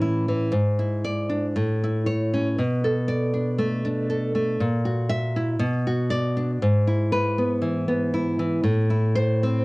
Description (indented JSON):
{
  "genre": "romantic piece for solo classical guitar",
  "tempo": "59 BPM",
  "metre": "2/4",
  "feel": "rubato",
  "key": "unclear",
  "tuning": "A4 = 441 Hz",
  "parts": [
    { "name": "nylon-string guitar", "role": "solo", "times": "0.0-9.6 s", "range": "G#2 to E5", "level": "-21 LUFS", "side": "equal", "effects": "none" }
  ],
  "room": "light reverb",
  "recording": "home recording on cassette",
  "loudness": "-21 LUFS",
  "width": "side -24 dB against mid",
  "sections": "0.0-9.6 A section",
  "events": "none",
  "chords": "0.0 A; 0.5 E7/G#; 1.6 A; 2.6 Bm7; 4.6 F#7/A#; 5.6 Bm; 6.6 E/G#; 8.6 Am"
}